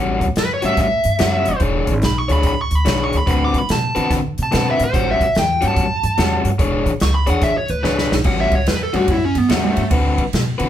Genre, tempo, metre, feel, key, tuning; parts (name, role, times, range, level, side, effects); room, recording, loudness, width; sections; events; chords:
electric blues shuffle; 145 BPM; 4/4; swing 65% on 8ths; A mixolydian; A4 = 440 Hz
overdriven semi-hollow guitar; riff; 0.0-10.7 s; A2 to C#5; -20 LUFS; left 3 dB
upright bass; bass; 0.0-10.7 s; E1 to D3; -21 LUFS; right 1 dB
natural country drum kit; drums; 0.2-10.7 s; crash cymbal, hi-hat, kick drum, ride cymbal, snare drum; -22 LUFS; equal
dark smooth lead guitar; melody; 0.4-9.9 s; A3 to D6; -20 LUFS; right 1 dB; overdrive
moderate studio reverb, RT60 0.5 s; band playing live in one room; -15 LUFS; side -11 dB against mid
0.0-8.2 A section; 8.2-10.7 A section
lead electric guitar solo 0.0-8.2, 8.2-10.7; drum fill 7.8-8.2
0.0 A6; 1.6 E6; 3.3 D6; 4.9 A6; 6.6 E6; 8.2 A6; 9.9 D6